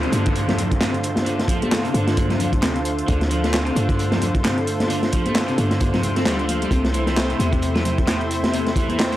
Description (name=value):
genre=breakbeat, breaks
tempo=132 BPM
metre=4/4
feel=swing 57% on 16ths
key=D minor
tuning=A4 = 440 Hz
part: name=lush unison pad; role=sustained chords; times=0.0-9.2 s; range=C3 to C5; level=-25 LUFS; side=equal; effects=chorus, sidechain pumping
part: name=crunchy overdriven guitar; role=riff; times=0.0-9.2 s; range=A2 to C4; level=-26 LUFS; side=equal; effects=tape echo
part: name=warm 808-style bass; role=bass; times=0.0-9.2 s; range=C2 to G2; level=-25 LUFS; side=equal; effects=none
part: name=house drum kit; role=drums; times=0.0-9.2 s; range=handclaps, hi-hat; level=-30 LUFS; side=equal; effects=none
part: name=downlifter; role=sound effects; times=0.0-3.1 s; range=none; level=-33 LUFS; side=equal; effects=none
part: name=crunchy breakbeat drum kit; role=drums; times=0.1-9.2 s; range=hi-hat, kick drum, snare drum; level=-22 LUFS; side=equal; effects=none
part: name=congas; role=percussion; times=0.1-9.0 s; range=none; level=-29 LUFS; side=left 1 dB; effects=none
room=light reverb, small room reverb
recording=dry, gritty hardware recording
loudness=-18 LUFS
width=side -14 dB against mid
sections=0.0-9.2 A section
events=none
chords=0.0 Dm7; 6.7 C6